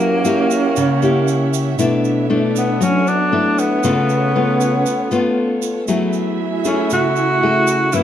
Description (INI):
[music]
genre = bossa nova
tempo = 117 BPM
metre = 4/4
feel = straight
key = unclear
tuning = A4 = 440 Hz
[part]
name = breathy tenor saxophone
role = melody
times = 0.0-8.0 s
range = Bb3 to F#4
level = -18 LUFS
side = equal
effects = none
[part]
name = mellow alto flute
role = second line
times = 0.0-8.0 s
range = C#4 to E4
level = -23 LUFS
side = right 6 dB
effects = none
[part]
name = nylon-string guitar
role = accompaniment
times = 0.0-8.0 s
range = F#2 to G#4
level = -17 LUFS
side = left 2 dB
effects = none
[part]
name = warm symphonic string section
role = sustained chords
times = 0.0-8.0 s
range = A3 to D6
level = -27 LUFS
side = right 4 dB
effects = none
[part]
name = tube shaker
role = percussion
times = 0.2-8.0 s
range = none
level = -31 LUFS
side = right 11 dB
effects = none
[sound]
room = wet large studio reverb, RT60 1.0 s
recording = dark, warm production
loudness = -14 LUFS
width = side -10 dB against mid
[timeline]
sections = 0.0-8.0 A section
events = none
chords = 0.0 F#7b9; 1.8 Bm11; 3.8 C#7b13; 5.9 F#m9